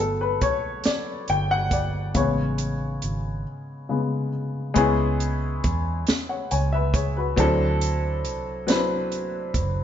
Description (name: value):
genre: slow six-eight R&B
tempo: 46 BPM (dotted quarters)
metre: 6/8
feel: straight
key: unclear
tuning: A4 = 439 Hz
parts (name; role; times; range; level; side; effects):
- dark baby grand piano; accompaniment; 0.0-9.8 s; C#3 to G#5; -24 LUFS; left 2 dB; none
- vintage muted fingered electric bass; bass; 0.0-9.8 s; F#1 to E2; -26 LUFS; right 1 dB; none
- compact cocktail drum kit; drums; 0.4-9.7 s; hi-hat, kick drum, snare drum; -26 LUFS; right 1 dB; none
room: moderate stone room reverb, RT60 1.2 s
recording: band playing live in one room, nothing above 7.6 kHz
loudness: -22 LUFS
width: side -10 dB against mid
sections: 0.0-4.8 A section; 4.8-9.8 B section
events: grand piano solo 0.0-4.8; break 3.5-4.8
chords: 0.0 Gmaj7; 2.2 Amaj9; 4.8 C#m7; 7.4 D9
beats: 0.85 | 2.16 3.46 | 4.76 6.07 | 7.37 8.68